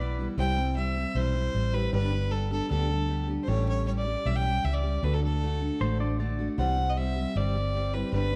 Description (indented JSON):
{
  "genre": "honky-tonk and classic country",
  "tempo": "155 BPM",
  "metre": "4/4",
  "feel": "straight",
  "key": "unclear",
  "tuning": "A4 = 439 Hz",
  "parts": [
    { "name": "clear fiddle", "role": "melody", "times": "0.0-8.4 s", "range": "A4 to G5", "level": "-35 LUFS", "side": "equal", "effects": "none" },
    { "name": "pedal steel guitar", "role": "second line", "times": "0.0-0.3, 5.8-6.5 s", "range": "B4 to D5", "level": "-40 LUFS", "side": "equal", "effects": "none" },
    { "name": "picked steel-string acoustic guitar", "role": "accompaniment", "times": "0.0-8.4 s", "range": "G2 to G4", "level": "-35 LUFS", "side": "equal", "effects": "none" },
    { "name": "vintage muted fingered electric bass", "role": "bass", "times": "0.0-8.4 s", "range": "G1 to D2", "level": "-30 LUFS", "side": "equal", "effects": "none" },
    { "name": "warm upright piano", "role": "accompaniment", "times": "0.4-8.4 s", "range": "C#4 to C5", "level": "-43 LUFS", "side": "equal", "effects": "none" }
  ],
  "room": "moderate large studio reverb, RT60 1.2 s",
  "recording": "dark, warm production",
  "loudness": "-28 LUFS",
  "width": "mono",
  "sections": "0.0-8.4 A section",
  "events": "none",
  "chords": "0.4 C; 1.9 G; 3.5 A7; 5.0 D; 6.6 C"
}